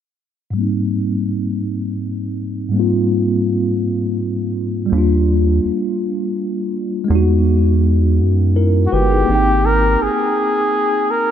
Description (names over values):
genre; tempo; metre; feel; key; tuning
slow six-eight R&B; 55 BPM (dotted quarters); 6/8; straight; Ab lydian; A4 = 440 Hz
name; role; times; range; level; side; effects
mellow tine electric piano; accompaniment; 0.5-11.3 s; Ab2 to G5; -18 LUFS; equal; medium stereo tremolo, low-pass filter
rubbery square bass; bass; 4.9-10.1 s; G1 to F#2; -15 LUFS; equal; none
warm flugelhorn; melody; 8.9-11.3 s; F#4 to Bb4; -16 LUFS; left 1 dB; ping-pong delay
room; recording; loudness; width
moderate huge ambient reverb, RT60 4.6 s; dreamy mix soaked in reverb; -15 LUFS; side -9 dB against mid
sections
0.5-9.3 A section; 9.3-11.3 B section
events
filter sweep on tine electric piano 0.5-9.3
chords
0.5 Abmaj9; 4.9 Ebmaj9; 7.1 Emaj9; 9.3 Abmaj9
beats
| 0.54 1.63 | 2.72 3.81 | 4.91 6.00 | 7.09 8.18 | 9.27 10.36